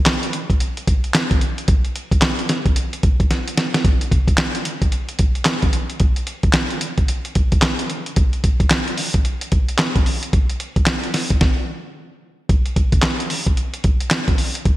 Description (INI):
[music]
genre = R&B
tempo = 111 BPM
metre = 4/4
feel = swing 61% on 16ths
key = none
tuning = none
[part]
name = dusty soul sampler-style drum kit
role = drums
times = 0.1-14.8 s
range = handclaps, hi-hat, kick drum, snare drum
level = -16 LUFS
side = equal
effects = none
[sound]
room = light reverb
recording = bright 1980s-style digital production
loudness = -16 LUFS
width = side -16 dB against mid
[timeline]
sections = 0.0-12.5 A section; 12.5-14.8 B section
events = drum fill 3.3-3.8; stop 11.4-12.5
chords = none